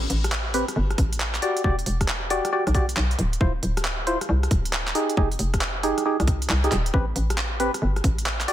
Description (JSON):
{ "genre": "UK garage, two-step garage", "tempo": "136 BPM", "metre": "4/4", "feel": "swing 65% on 16ths", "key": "A minor", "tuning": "A4 = 440 Hz", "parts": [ { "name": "hollow knocking FM bass", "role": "bass", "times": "0.0-8.5 s", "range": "D1 to C2", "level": "-24 LUFS", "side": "equal", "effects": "none" }, { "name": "garage drum kit", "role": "drums", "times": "0.1-8.5 s", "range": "handclaps, hi-hat, rim click", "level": "-28 LUFS", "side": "equal", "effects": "none" }, { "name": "percussive organ stab", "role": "stabs", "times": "0.5-8.5 s", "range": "C4 to D5", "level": "-26 LUFS", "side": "equal", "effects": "chorus, ping-pong delay" }, { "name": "electronic kick drum", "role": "drums", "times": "1.0-8.2 s", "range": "none", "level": "-24 LUFS", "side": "equal", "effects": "none" } ], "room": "little or no reverb", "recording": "none", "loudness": "-21 LUFS", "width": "side -12 dB against mid", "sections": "0.0-8.5 A section", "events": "none", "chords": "0.0 Am9; 1.4 Em9; 3.4 Dm9; 5.0 Fm9; 6.9 Am9", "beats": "0.32 0.76 1.20 | 1.64 2.08 2.52 2.97 | 3.41 3.85 4.29 4.73 | 5.17 5.61 6.05 6.50 | 6.94 7.38 7.82 8.26" }